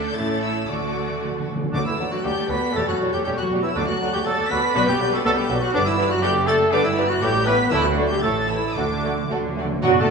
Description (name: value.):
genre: quick classical-period movement for symphony orchestra.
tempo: 110-123 BPM.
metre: 2/4.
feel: rubato.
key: D major.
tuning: A4 = 440 Hz.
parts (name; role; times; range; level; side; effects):
rich chamber violin section; melody; 0.0-10.1 s; F#5 to B6; -30 LUFS; left 2 dB; none.
rich chamber violin section; second line; 0.0-10.1 s; F#4 to D5; -31 LUFS; left 2 dB; none.
rich chamber viola section; accompaniment; 0.0-10.1 s; F#3 to A4; -28 LUFS; right 1 dB; none.
dark French horn section; sustained chords; 0.0-10.1 s; D3 to F#4; -27 LUFS; left 4 dB; none.
rich chamber double bass section; bass; 0.0-10.0 s; E1 to D2; -30 LUFS; right 4 dB; none.
rich studio cello section; bass; 0.0-10.1 s; D2 to D3; -30 LUFS; right 1 dB; none.
timpani; percussion; 0.7-4.5, 7.7-10.1 s; B2 to D3; -30 LUFS; right 1 dB; none.
large flute ensemble; second line; 1.7-10.1 s; F#4 to F#5; -29 LUFS; right 4 dB; none.
mellow clarinet; second line; 1.7-10.1 s; D4 to B4; -28 LUFS; left 1 dB; none.
mellow cor anglais; second line; 1.7-10.1 s; D4 to D5; -29 LUFS; right 3 dB; none.
dark bassoon; accompaniment; 1.7-10.1 s; F#3 to B3; -29 LUFS; right 1 dB; none.
warm trumpet; stabs; 1.7-10.1 s; D4 to B4; -26 LUFS; right 3 dB; none.
room: wet scoring stage reverb, RT60 1.8 s.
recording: studio ambience.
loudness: -19 LUFS.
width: side -5 dB against mid.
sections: 0.0-1.7 A section; 1.7-9.8 B section.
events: timpani fill 0.7-1.7, 8.8-9.8.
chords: 0.2 A; 0.7 D; 2.8 A7/E; 3.8 D; 4.8 Bm; 5.7 G; 6.2 D/F#; 6.7 G; 7.2 A7; 7.7 D; 8.2 A; 8.8 D.